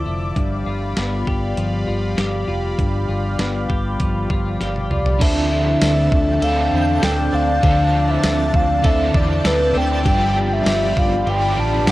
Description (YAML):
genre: dream pop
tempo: 99 BPM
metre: 4/4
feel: straight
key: D dorian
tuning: A4 = 440 Hz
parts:
  - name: phased analog pad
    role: sustained chords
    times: 0.0-11.9 s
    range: F3 to D6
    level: -25 LUFS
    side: left 1 dB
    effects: phaser, chorus
  - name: twelve-string electric guitar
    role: arpeggios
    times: 0.0-11.9 s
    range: G2 to A4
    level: -24 LUFS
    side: left 2 dB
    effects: lush chorus, digital delay
  - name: vintage muted fingered electric bass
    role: bass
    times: 0.0-11.9 s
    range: F1 to E2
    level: -22 LUFS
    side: equal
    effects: none
  - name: detuned 8-bit digital drum machine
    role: drums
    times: 0.4-11.9 s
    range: crash cymbal, hi-hat, kick drum, ride cymbal, snare drum, tambourine, toms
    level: -21 LUFS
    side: equal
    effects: none
  - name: hollow clarinet-like synth lead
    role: melody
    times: 4.9-11.9 s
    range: B4 to A5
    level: -20 LUFS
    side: equal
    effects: chorus, digital delay
  - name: crunchy overdriven guitar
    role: accompaniment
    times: 5.2-11.9 s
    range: G2 to A4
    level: -24 LUFS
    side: right 4 dB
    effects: tremolo, analog chorus
  - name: twinkling granular texture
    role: texture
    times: 6.3-11.9 s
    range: G5 to A6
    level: -32 LUFS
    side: equal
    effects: built-in reverb, digital delay
room: light reverb, digital ambience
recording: worn, warbling old tape, cassette tape, warbly pitch drift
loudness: -16 LUFS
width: side -17 dB against mid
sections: 0.0-5.2 A section; 5.2-11.9 B section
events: drum fill 4.6-5.2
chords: 0.4 G7; 5.2 Dm9; 10.1 G7